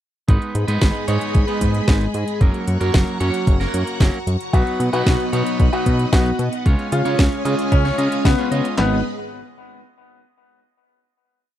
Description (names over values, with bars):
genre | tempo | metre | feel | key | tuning
italo disco | 113 BPM | 4/4 | straight | G# dorian | A4 = 441 Hz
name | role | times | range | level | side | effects
string machine, full ensemble | sustained chords | 0.3-9.0 s | G#3 to C#6 | -25 LUFS | equal | ensemble chorus
clean electric guitar | stabs | 0.3-9.0 s | F#3 to D#5 | -26 LUFS | right 3 dB | tape echo
fat analog bass | bass | 0.3-9.0 s | F#1 to C#3 | -22 LUFS | equal | none
clean 12-bit digital drum machine | drums | 0.3-8.9 s | handclaps, kick drum, snare drum | -16 LUFS | equal | none
house drum kit | drums | 0.3-8.8 s | hi-hat, snare drum | -25 LUFS | equal | none
bright grand piano | melody | 4.5-9.0 s | B3 to F#4 | -24 LUFS | left 4 dB | tape echo
room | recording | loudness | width
little or no reverb | dry, close 1970s-style studio recording | -16 LUFS | side -12 dB against mid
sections
0.3-8.8 verse; 8.8-10.9 final chord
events
none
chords
0.3 G#m; 2.4 F#; 4.5 B; 6.7 C#; 8.8 G#m